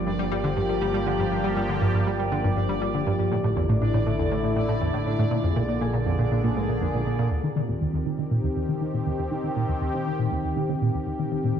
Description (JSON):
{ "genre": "ambient, sequencer-driven space music", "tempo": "120 BPM", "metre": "4/4", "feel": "straight", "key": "unclear", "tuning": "A4 = 440 Hz", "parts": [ { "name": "sweeping resonant pad", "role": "sustained chords", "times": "0.0-11.6 s", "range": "D3 to Ab4", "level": "-28 LUFS", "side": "equal", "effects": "chorus" }, { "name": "concert harp", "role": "arpeggios", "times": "0.0-9.6 s", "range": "C4 to D6", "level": "-32 LUFS", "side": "left 5 dB", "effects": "auto-pan, analog delay" }, { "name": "fat analog bass", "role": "bass", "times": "0.0-7.3 s", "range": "G1 to Bb1", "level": "-33 LUFS", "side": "equal", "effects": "none" }, { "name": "bubbling stepped-filter texture", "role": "texture", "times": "0.0-11.6 s", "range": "Bb4 to D5", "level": "-37 LUFS", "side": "right 6 dB", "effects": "chorus, built-in reverb" }, { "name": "tight sequenced synth", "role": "riff", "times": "0.1-11.6 s", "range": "Eb2 to G3", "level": "-25 LUFS", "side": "right 1 dB", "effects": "chorus, analog delay" } ], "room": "wet concert hall reverb, RT60 2.3 s", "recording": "cassette tape", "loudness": "-22 LUFS", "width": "side -8 dB against mid", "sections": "0.0-7.3 A section; 7.3-11.6 B section", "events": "filter sweep on harp 0.0-7.3", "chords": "0.0 Gm7; 3.3 Asus4; 5.3 Bb7; 7.3 Eb6" }